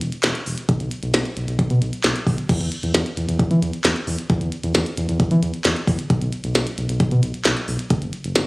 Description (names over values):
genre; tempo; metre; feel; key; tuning
synth-pop; 133 BPM; 4/4; straight; unclear; A4 = 443 Hz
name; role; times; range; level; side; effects
round analog bass; bass; 0.0-8.4 s; E1 to E3; -21 LUFS; equal; none
minimal click drum kit; drums; 0.0-8.5 s; crash cymbal, handclaps, hi-hat, kick drum, snare drum; -21 LUFS; equal; none
room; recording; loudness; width
light reverb; recorded on a phone in the room, studio ambience; -18 LUFS; side -25 dB against mid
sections
0.0-2.5 A section; 2.5-8.5 B section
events
none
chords
none